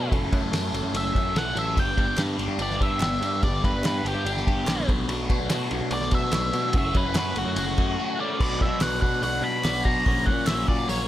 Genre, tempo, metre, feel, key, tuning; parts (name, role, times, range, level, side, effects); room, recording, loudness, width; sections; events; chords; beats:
indie rock; 145 BPM; 4/4; straight; A4 = 440 Hz
octave-fuzz lead guitar; melody; 0.0-11.1 s; F#4 to B5; -28 LUFS; equal; distortion
overdriven combo organ; sustained chords; 0.0-11.1 s; F#3 to B4; -40 LUFS; right 1 dB
crunchy overdriven guitar; riff; 0.0-11.1 s; F#3 to A4; -28 LUFS; left 2 dB; phaser
picked electric bass; bass; 0.0-11.1 s; F#1 to B2; -29 LUFS; equal
cloth-damped thuddy drum kit; drums; 0.1-11.0 s; crash cymbal, hi-hat, kick drum, ride cymbal, snare drum; -26 LUFS; equal
group handclap; percussion; 2.2-10.6 s; -38 LUFS; right 2 dB
glockenspiel with hard plastic mallets; second line; 8.4-11.1 s; A#5 to D6; -39 LUFS; equal
little or no reverb; -22 LUFS; side -13 dB against mid
0.0-8.4 A section; 8.4-11.1 B section
lead electric guitar solo 0.0-8.4; break 8.0-8.4
0.1 F#m7; 1.8 G; 4.9 Bm7; 6.7 F#m7; 8.4 Bm; 10.1 F#/A#
| 0.11 0.52 0.94 1.35 | 1.77 2.18 2.60 3.01 | 3.42 3.84 4.25 4.67 | 5.08 5.50 5.91 6.33 | 6.74 7.15 7.57 7.98 | 8.40 8.81 9.23 9.64 | 10.06 10.47 10.89